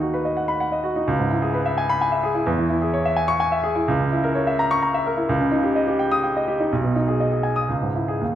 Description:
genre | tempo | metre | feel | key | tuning
classical, virtuoso piano study | 128 BPM | 3/4 | rubato | G# minor from 3.9 s | A4 = 440 Hz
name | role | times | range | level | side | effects
warm baby grand piano | solo | 0.0-8.4 s | B1 to D#6 | -19 LUFS | equal | none
room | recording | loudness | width
wet recital hall reverb, RT60 1.4 s | none | -19 LUFS | side -11 dB against mid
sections
0.0-8.4 A section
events
none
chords
0.0 B/D#; 1.1 C#m7; 2.5 C#m/E; 3.9 A#dim/C#; 5.3 D#7/C#; 6.7 G#m/B; 7.7 C#m

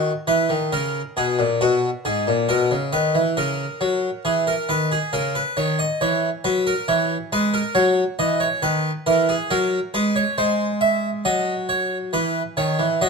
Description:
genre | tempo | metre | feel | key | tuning
classical, baroque-style two-part invention for harpsichord | 68 BPM | 4/4 | straight | unclear | A4 = 440 Hz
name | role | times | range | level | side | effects
harpsichord | solo | 0.0-13.1 s | G#2 to E5 | -19 LUFS | equal | none
room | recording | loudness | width
moderate stone room reverb, RT60 1.1 s | dark, warm production | -19 LUFS | side -4 dB against mid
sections
0.0-13.1 A section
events
none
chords
0.0 D#7(no3); 1.6 G#m; 3.4 C#m; 5.1 F#7/C#; 6.9 F#7/E; 8.6 B/D#; 10.4 G#7; 12.1 C#m

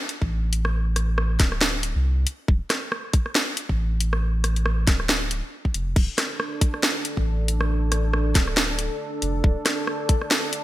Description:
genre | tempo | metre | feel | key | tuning
deep dubstep | 138 BPM | 4/4 | swing 57% on 16ths, half-time | D minor | A4 = 441 Hz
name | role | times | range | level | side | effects
garage drum kit | drums | 0.1-10.6 s | crash cymbal, hi-hat, rim click, snare drum | -24 LUFS | equal | gated reverb
soft dub sub bass | bass | 0.2-9.6 s | D1 to C2 | -23 LUFS | equal | none
electronic kick drum | drums | 0.2-10.2 s | none | -20 LUFS | equal | none
dark analog pad | sustained chords | 6.3-10.6 s | D4 to A4 | -30 LUFS | right 1 dB | chorus
room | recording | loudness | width
light reverb | bright 1980s-style digital production | -21 LUFS | side -15 dB against mid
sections
0.0-6.0 A section; 6.0-10.6 A section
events
drop 0.0-6.0, 6.0-10.6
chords
0.0 D5

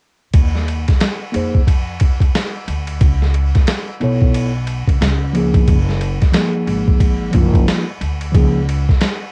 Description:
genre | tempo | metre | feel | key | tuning
hip hop, jazz-hop | 90 BPM | 4/4 | swing 60% on 16ths | unclear | A4 = 440 Hz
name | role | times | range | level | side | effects
upright bass | bass | 0.3-8.8 s | Gb1 to F2 | -21 LUFS | equal | none
boom bap sampler-style drum kit | drums | 0.3-9.2 s | hi-hat, kick drum, ride cymbal, snare drum | -18 LUFS | equal | cassette tape
mellow tine electric piano | accompaniment | 1.3-8.6 s | F3 to C#5 | -20 LUFS | equal | cassette tape
room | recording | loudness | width
moderate booth ambience, RT60 0.2 s | home recording on cassette | -16 LUFS | mono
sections
0.3-9.3 A section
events
none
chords
0.3 Ebsus2; 3.0 B9sus4; 5.0 Db69; 5.7 Gbmaj9; 8.3 Db69

